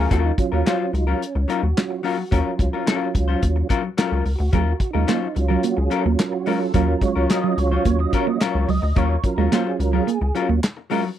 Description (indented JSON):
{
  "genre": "funk",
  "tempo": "108 BPM",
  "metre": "4/4",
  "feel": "straight",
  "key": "Eb minor",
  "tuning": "A4 = 440 Hz",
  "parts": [
    { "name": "vintage hollow-body jazz guitar", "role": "accompaniment", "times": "0.0-11.1 s", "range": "Gb3 to C5", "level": "-24 LUFS", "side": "left 8 dB", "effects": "none" },
    { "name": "mellow tonewheel organ", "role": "stabs", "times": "0.0-10.6 s", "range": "Gb3 to Eb5", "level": "-25 LUFS", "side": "right 5 dB", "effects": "chorus vibrato, slow rotary speaker" },
    { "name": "rubbery square bass", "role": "bass", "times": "0.0-10.6 s", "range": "Db2 to Eb2", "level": "-21 LUFS", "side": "equal", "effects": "none" },
    { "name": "warm soul drum kit", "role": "drums", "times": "0.1-11.0 s", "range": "handclaps, hi-hat, kick drum, snare drum", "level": "-22 LUFS", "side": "equal", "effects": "none" },
    { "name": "semi-hollow electric guitar", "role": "riff", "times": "4.5-11.0 s", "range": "Gb3 to Bb3", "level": "-23 LUFS", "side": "right 12 dB", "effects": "none" }
  ],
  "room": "little or no reverb",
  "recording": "dry, close 1970s-style studio recording",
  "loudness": "-18 LUFS",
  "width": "side -11 dB against mid",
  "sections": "0.0-11.2 A section",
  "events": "tonewheel organ solo 0.0-11.2",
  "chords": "0.0 Ebm9"
}